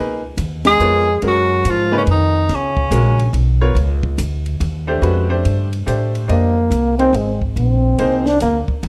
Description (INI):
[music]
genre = modal jazz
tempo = 142 BPM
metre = 3/4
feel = swing 65% on 8ths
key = unclear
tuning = A4 = 440 Hz
[part]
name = bright baby grand piano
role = accompaniment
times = 0.0-8.2 s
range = G#3 to Eb5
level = -24 LUFS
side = equal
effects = none
[part]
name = upright bass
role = bass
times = 0.0-8.9 s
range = Ab1 to A2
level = -20 LUFS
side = equal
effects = none
[part]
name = compact cocktail drum kit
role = drums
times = 0.4-8.9 s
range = hi-hat, kick drum, ride cymbal, snare drum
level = -29 LUFS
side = equal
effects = none
[part]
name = warm tenor saxophone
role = melody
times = 0.7-3.4 s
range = C#4 to G#4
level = -19 LUFS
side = equal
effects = none
[part]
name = warm trombone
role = second line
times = 0.7-3.3, 6.3-8.6 s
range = C#3 to D4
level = -21 LUFS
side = equal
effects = none
[sound]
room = light reverb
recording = lossy compression artefacts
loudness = -16 LUFS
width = mono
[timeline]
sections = 0.0-6.3 A section; 6.3-8.9 B section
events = band accent 0.6; trombone solo 6.3-8.9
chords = 0.0 F#maj9; 5.0 F; 6.3 Bb9sus4